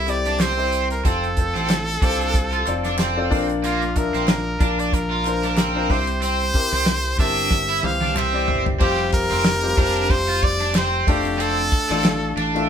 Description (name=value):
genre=piano-driven pop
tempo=93 BPM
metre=4/4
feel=swing 56% on 16ths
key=F major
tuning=A4 = 440 Hz
part: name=brilliant trumpet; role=melody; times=0.0-12.4 s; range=F4 to F5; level=-24 LUFS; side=right 1 dB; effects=none
part: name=bright concert grand piano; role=accompaniment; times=0.0-12.7 s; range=Bb2 to E5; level=-26 LUFS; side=left 4 dB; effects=none
part: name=raw garage guitar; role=riff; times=0.0-12.7 s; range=Bb3 to F4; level=-25 LUFS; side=right 3 dB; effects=overdrive
part: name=modern bright fingered electric bass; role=bass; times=0.0-12.7 s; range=F1 to C2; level=-26 LUFS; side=equal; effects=none
part: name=damped 70s drum kit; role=drums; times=0.1-12.7 s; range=crash cymbal, hi-hat, kick drum, ride cymbal, snare drum, toms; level=-22 LUFS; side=equal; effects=none
part: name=group handclap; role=percussion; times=0.1-12.2 s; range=none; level=-34 LUFS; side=left 4 dB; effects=none
room=moderate studio reverb, RT60 0.6 s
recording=band playing live in one room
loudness=-18 LUFS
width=side -8 dB against mid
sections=0.0-8.8 A section; 8.8-12.7 B section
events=drum fill 7.5-8.8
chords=0.0 C; 1.0 F; 3.3 Bb; 5.9 C; 8.8 Fsus2; 11.1 Dm/F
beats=0.40 | 1.05 1.70 2.34 2.99 | 3.63 4.28 4.93 5.58 | 6.22 6.87 7.52 8.16 | 8.81 9.46 10.10 10.75 | 11.40 12.04 12.69